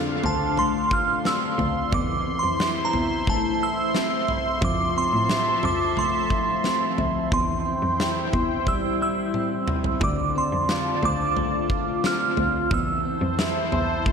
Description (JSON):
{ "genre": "dream pop", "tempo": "89 BPM", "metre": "4/4", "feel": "straight", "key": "D minor", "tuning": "A4 = 439 Hz", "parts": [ { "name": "phased analog pad", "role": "sustained chords", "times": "0.0-14.1 s", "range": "F3 to C6", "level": "-28 LUFS", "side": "left 1 dB", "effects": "phaser, chorus" }, { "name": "clean electric guitar", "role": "arpeggios", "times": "0.0-14.1 s", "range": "D3 to C5", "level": "-28 LUFS", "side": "left 3 dB", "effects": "lush chorus, analog delay" }, { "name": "clear cello", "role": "bass", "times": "0.0-14.1 s", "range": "D2 to A2", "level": "-30 LUFS", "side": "equal", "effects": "none" }, { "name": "huge arena drum kit", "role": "drums", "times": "0.2-14.1 s", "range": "kick drum, snare drum, toms", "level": "-28 LUFS", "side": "equal", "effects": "analog delay" }, { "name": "glassy synth bell", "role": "melody", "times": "0.3-14.0 s", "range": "A5 to F6", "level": "-26 LUFS", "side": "right 2 dB", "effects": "chorus, analog delay" }, { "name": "vibraphone with hard mallets", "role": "texture", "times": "10.0-10.7 s", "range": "D5", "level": "-36 LUFS", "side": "right 4 dB", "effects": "analog delay" } ], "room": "wet spring reverb, RT60 2.2 s", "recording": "echo-heavy mix", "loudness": "-21 LUFS", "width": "side -6 dB against mid", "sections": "0.0-14.1 A section", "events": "drum fill 9.3-10.0", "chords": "0.0 Dm7; 1.9 Am/E; 4.6 Fmaj7; 7.3 C/E; 10.0 Dm7; 12.7 Am/E", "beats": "0.58 1.25 | 1.93 2.60 3.27 3.95 | 4.62 5.30 5.97 6.64 | 7.32 7.99 8.67 9.34 | 10.02 10.69 11.36 12.04 | 12.71 13.39 14.06" }